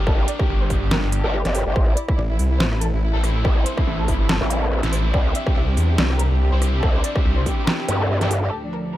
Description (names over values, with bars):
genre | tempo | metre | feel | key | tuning
heavy wobble dubstep | 142 BPM | 4/4 | swing 55% on 16ths, half-time | unclear | A4 = 440 Hz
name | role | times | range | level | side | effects
warm studio violin section | melody | 0.0-9.0 s | D4 to E5 | -28 LUFS | equal | digital delay
distorted electric guitar | stabs | 0.0-8.3 s | C4 to Bb4 | -29 LUFS | left 1 dB | distortion, digital delay
snarling distorted saw bass | bass | 0.0-7.4 s | G1 to E2 | -20 LUFS | equal | distortion, overdrive
growl bass | bass | 0.1-8.5 s | G1 to G2 | -21 LUFS | equal | chorus, overdrive
electronic kick drum | drums | 0.1-7.6 s | none | -20 LUFS | equal | distortion
dubstep drum kit | drums | 0.3-8.8 s | crash cymbal, hi-hat, rim click, snare drum | -24 LUFS | equal | low-pass filter on snare, low-pass filter on hats, low-pass filter on cymbals
rich chamber string section | sustained chords | 8.5-9.0 s | D2 to F3 | -28 LUFS | right 1 dB | sidechain pumping
room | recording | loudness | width
digital ambience | none | -18 LUFS | side -14 dB against mid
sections
0.0-8.5 A section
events
drop 0.0-8.5; kick drops out 8.1-8.5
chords
0.0 Gm; 1.8 Am; 5.1 Cadd9